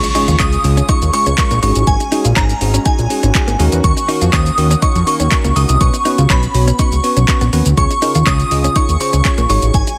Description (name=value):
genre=dance-pop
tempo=122 BPM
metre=4/4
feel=straight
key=Db major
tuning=A4 = 440 Hz
part: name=shimmering bell with halo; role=melody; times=0.0-10.0 s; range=Ab5 to Eb6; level=-20 LUFS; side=equal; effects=ensemble chorus
part: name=bell-like tine electric piano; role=accompaniment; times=0.0-9.9 s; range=Ab3 to Eb5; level=-24 LUFS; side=equal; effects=sidechain pumping
part: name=sweeping resonant pad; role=sustained chords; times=0.1-10.0 s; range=Db3 to Ab4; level=-30 LUFS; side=equal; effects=chorus, sidechain pumping
part: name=direct-recorded clean electric guitar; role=riff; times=0.0-9.9 s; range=Ab3 to F4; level=-26 LUFS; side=equal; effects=lush chorus
part: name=smooth R&B drum kit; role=drums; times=0.0-10.0 s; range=handclaps, hi-hat, kick drum, shaker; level=-19 LUFS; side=equal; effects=none
part: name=impact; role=sound effects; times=0.1-1.9 s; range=none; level=-31 LUFS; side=equal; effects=none
part: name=fat analog bass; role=bass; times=0.3-9.8 s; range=Ab1 to F2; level=-16 LUFS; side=equal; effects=sidechain pumping
room=little or no reverb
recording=none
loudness=-14 LUFS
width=mono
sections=0.0-10.0 A section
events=impact 0.0-1.9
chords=0.0 Db; 1.6 Ab7sus4; 3.6 Ebm7; 5.8 Cbsus2; 7.8 Db